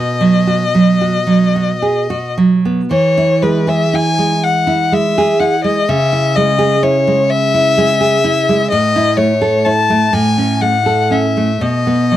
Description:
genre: romantic duo for violin and classical guitar.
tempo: 41 BPM (dotted quarters).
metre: 6/8.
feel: uneven beats, rubato.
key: E major.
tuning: A4 = 436 Hz.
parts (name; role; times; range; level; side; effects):
warm violin; melody; 0.0-12.2 s; B4 to A5; -14 LUFS; left 4 dB; none.
nylon-string guitar; accompaniment; 0.0-12.2 s; A2 to A4; -14 LUFS; right 2 dB; none.
room: light reverb.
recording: dry, close 1970s-style studio recording.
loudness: -11 LUFS.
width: side -12 dB against mid.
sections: 0.0-2.9 A section; 2.9-12.2 B section.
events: none.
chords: 0.0 B; 2.9 E; 5.9 C#m; 8.7 A5; 10.1 Amaj7; 11.6 B.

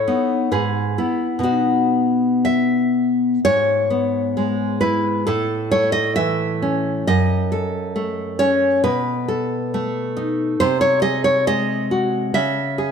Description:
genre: romantic piece for solo classical guitar.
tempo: 67 BPM.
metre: 2/4.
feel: rubato.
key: E major.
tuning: A4 = 440 Hz.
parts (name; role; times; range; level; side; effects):
nylon-string guitar; solo; 0.0-12.9 s; F#2 to E5; -17 LUFS; left 1 dB; none.
room: moderate scoring stage reverb, RT60 1.6 s.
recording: none.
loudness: -17 LUFS.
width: side -6 dB against mid.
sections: 0.0-3.4 A section; 3.4-12.9 B section.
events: none.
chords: 0.0 B7; 0.5 E/G#; 1.4 B; 3.4 E/G#; 5.3 A; 7.1 F#m; 8.8 B7; 10.6 G#7/B#; 12.3 C#m.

